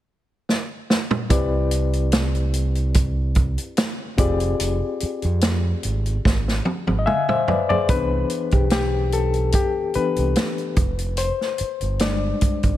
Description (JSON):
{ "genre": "lush 1970s-style soul", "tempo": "73 BPM", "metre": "4/4", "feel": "swing 54% on 16ths", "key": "C major", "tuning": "A4 = 444 Hz", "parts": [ { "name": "vintage drum kit", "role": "drums", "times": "0.5-12.8 s", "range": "hi-hat, kick drum, snare drum, toms", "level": "-22 LUFS", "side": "right 1 dB", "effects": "none" }, { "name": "barky reed electric piano", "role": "accompaniment", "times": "1.3-12.8 s", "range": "E3 to Ab5", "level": "-24 LUFS", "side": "left 5 dB", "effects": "overdrive, fast tremolo" }, { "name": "overdriven fingered electric bass", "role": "bass", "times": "1.3-12.8 s", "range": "F1 to F2", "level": "-22 LUFS", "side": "right 1 dB", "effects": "none" } ], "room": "light reverb, studio ambience", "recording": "none", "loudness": "-19 LUFS", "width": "side -13 dB against mid", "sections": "0.0-1.3 A section; 1.3-7.9 B section; 7.9-12.8 C section", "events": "drum fill 0.5-1.3, 6.2-7.9; reed electric piano solo 7.9-12.8", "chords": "0.0 N.C.; 1.3 Cmaj7; 4.2 Fm6; 7.9 Cmaj7; 10.8 Fm6" }